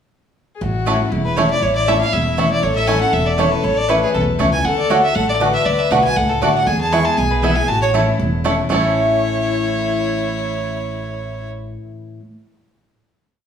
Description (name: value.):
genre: bluegrass.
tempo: 237 BPM.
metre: 4/4.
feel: straight.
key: A major.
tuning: A4 = 440 Hz.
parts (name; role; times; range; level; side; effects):
clear fiddle; second line; 0.6-11.5 s; E4 to B4; -24 LUFS; left 6 dB; none.
picked steel-string acoustic guitar; accompaniment; 0.6-12.2 s; E2 to F#4; -22 LUFS; left 2 dB; none.
upright bass; bass; 0.6-11.7 s; E1 to E2; -24 LUFS; equal; none.
bluegrass banjo; arpeggios; 0.9-11.8 s; A3 to A4; -23 LUFS; right 2 dB; none.
mandolin; stabs; 0.9-12.2 s; A3 to A5; -22 LUFS; right 1 dB; none.
clear fiddle; melody; 1.2-11.5 s; G#4 to C#6; -20 LUFS; right 1 dB; none.
room: wet large studio reverb, RT60 1.3 s.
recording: small room reverb.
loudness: -15 LUFS.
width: side -8 dB against mid.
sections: 0.0-0.6 pickup bar; 0.6-8.7 A section; 8.7-10.7 final chord.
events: none.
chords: 0.0 N.C.; 0.6 A; 4.6 D; 6.7 E; 7.7 A.